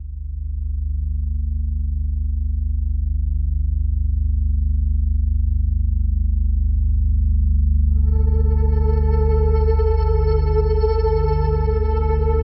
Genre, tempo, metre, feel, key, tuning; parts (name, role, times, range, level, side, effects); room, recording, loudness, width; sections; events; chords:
dark ambient drone; free time; A4 = 440 Hz
deep rumbling drone; drone; 0.0-12.4 s; G1 to D2; -21 LUFS; equal; built-in reverb, lush chorus
flickering grainy texture; texture; 8.2-12.4 s; A4; -25 LUFS; equal; built-in reverb
wet cathedral reverb, RT60 5.4 s; in a vast, echoing space; -20 LUFS; mono
0.0-12.4 A section
0.0 Gsus2